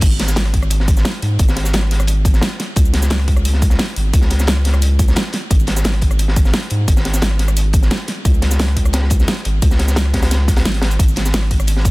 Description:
liquid drum and bass; 175 BPM; 4/4; straight; A4 = 440 Hz
saturated sub bass; bass; 0.0-11.9 s; Ab1 to Ab2; -16 LUFS; equal
crunchy breakbeat drum kit; drums; 0.0-11.9 s; hi-hat, snare drum; -24 LUFS; equal; high-pass filter on hats, high-pass filter on snare, high-pass filter on room
electronic kick drum; drums; 0.0-11.9 s; -15 LUFS; equal
pop drum kit; drums; 0.0-11.9 s; crash cymbal, hi-hat, ride cymbal, rim click, shaker, snare drum; -22 LUFS; equal
small room ambience; dense, heavily limited modern master; -13 LUFS; side -22 dB against mid
0.0-11.9 A section
drop 0.0-11.9; break 10.7-11.0

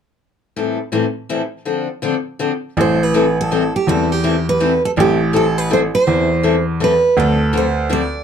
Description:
acoustic string swing (jazz manouche); 164 BPM; 3/4; swing 60% on 8ths; A minor; A4 = 438 Hz
picked steel-string acoustic guitar; accompaniment; 0.6-8.0 s; A2 to A4; -19 LUFS; left 6 dB
picked steel-string acoustic guitar; melody; 2.8-8.2 s; G4 to D5; -17 LUFS; right 4 dB
bright baby grand piano; bass; 2.8-8.1 s; A1 to E2; -17 LUFS; right 1 dB
light reverb; dark, warm production; -14 LUFS; side -8 dB against mid
0.6-2.8 A section; 2.8-8.2 B section
0.6 Am7; 1.7 Dm7; 2.8 Am7; 7.2 Dm7

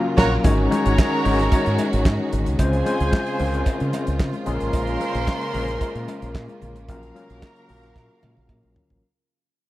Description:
disco; 112 BPM; 4/4; straight; A4 = 440 Hz
overdriven tine electric piano; accompaniment; 0.0-9.1 s; Gb3 to Db5; -25 LUFS; left 3 dB; medium tremolo
rich symphonic string section; sustained chords; 0.0-9.0 s; Db3 to F5; -30 LUFS; right 2 dB
rich studio violin section; second line; 0.2-8.7 s; Ab4 to C6; -30 LUFS; right 1 dB
clear horn section; stabs; 0.2-8.7 s; Bb3 to Db5; -28 LUFS; right 1 dB
deep dub fingered electric bass; bass; 0.2-9.0 s; Ab1 to Db3; -24 LUFS; equal
damped 70s drum kit; drums; 0.2-9.0 s; crash cymbal, handclaps, hi-hat, kick drum, snare drum, toms; -20 LUFS; right 1 dB
congas; percussion; 0.4-8.9 s; -34 LUFS; left 4 dB
cowbell; percussion; 0.4-8.6 s; -38 LUFS; right 4 dB
studio ambience; -19 LUFS; side -16 dB against mid
0.4-9.0 A section
band accent 0.0-0.4; fade-out 0.4-9.0; drum fill 8.0-9.0
0.4 Ab7sus4; 2.6 Dbmaj7; 4.5 Bbm7; 6.9 Gbmaj7/Bb

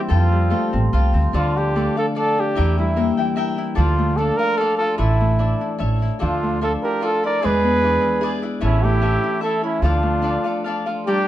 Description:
mexican folk, mariachi; 148 BPM; 3/4; swing 53% on 8ths, rubato; D minor; A4 = 439 Hz
mellow trumpet; melody; 0.0-11.3 s; E4 to D5; -21 LUFS; right 1 dB
cavaquinho; accompaniment; 0.0-11.3 s; D4 to G5; -27 LUFS; left 3 dB
Celtic harp; arpeggios; 0.0-11.3 s; D3 to F5; -24 LUFS; left 2 dB
warm trumpet; second line; 0.1-0.9, 6.2-11.3 s; C4 to Bb4; -29 LUFS; right 5 dB
upright bass; bass; 0.1-10.4 s; A1 to F2; -19 LUFS; right 1 dB
moderate studio reverb, RT60 0.6 s; dark, warm production; -17 LUFS; side -13 dB against mid
0.0-1.3 A section; 1.3-11.1 B section
0.1 Fadd9; 1.3 Dm; 2.6 Edim; 3.8 Dm; 5.0 Asus4; 5.8 A; 6.2 Dmadd9; 7.4 E7; 8.6 A; 9.8 Dm

